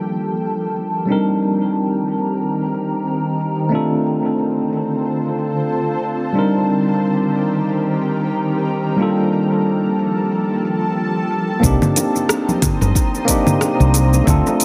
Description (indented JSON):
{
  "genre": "sunset chillout",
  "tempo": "91 BPM",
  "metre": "4/4",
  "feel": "swing 57% on 16ths",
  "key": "C dorian",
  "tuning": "A4 = 440 Hz",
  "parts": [
    { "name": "tine electric piano", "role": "accompaniment", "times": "0.0-14.6 s", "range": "G3 to Bb4", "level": "-21 LUFS", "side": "equal", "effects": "dub echo" },
    { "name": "shimmering ambient pad", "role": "sustained chords", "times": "0.0-14.6 s", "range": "D3 to Eb6", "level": "-24 LUFS", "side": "equal", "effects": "chorus, built-in reverb" },
    { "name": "deep house drum kit", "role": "drums", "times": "0.1-14.6 s", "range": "congas, hi-hat, rim click, shaker", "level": "-21 LUFS", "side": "equal", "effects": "overdrive, low-pass filter on perc, studio reverb, low-pass filter on hats, low-pass filter on snare, tape echo" },
    { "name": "woody fretless electric bass", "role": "bass", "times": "11.6-14.4 s", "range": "G1 to D2", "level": "-17 LUFS", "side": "equal", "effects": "none" },
    { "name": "electronic kick drum", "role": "drums", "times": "11.6-14.4 s", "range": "none", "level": "-22 LUFS", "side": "equal", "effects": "overdrive, studio reverb" },
    { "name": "bongos and congas", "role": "percussion", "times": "11.6-14.6 s", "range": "none", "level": "-30 LUFS", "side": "equal", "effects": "none" }
  ],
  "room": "wet spring reverb, RT60 2.2 s",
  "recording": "echo-heavy mix",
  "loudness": "-18 LUFS",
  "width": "mono",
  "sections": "0.0-11.6 A section; 11.6-14.6 B section",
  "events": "filter sweep on ambient pad 0.0-11.6",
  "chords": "0.0 Gm9; 1.1 Cm7; 3.7 Dm7; 6.4 Cm7; 9.0 Gm9; 11.6 Cm7"
}